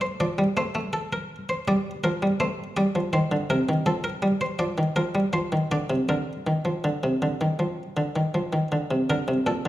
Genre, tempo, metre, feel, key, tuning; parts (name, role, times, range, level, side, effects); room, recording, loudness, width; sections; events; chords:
classical, baroque-style two-part invention for harpsichord; 81 BPM; 4/4; straight; Bb major; A4 = 440 Hz
buff-stop harpsichord; solo; 0.0-9.7 s; Bb2 to D5; -23 LUFS; equal
moderate recital hall reverb, RT60 1.5 s; minimal, uncompressed stereo recording; -23 LUFS; side -15 dB against mid
0.0-9.1 A section
0.2 Dm7/F; 3.1 Cm; 4.6 Bb; 5.3 F5; 6.1 Bb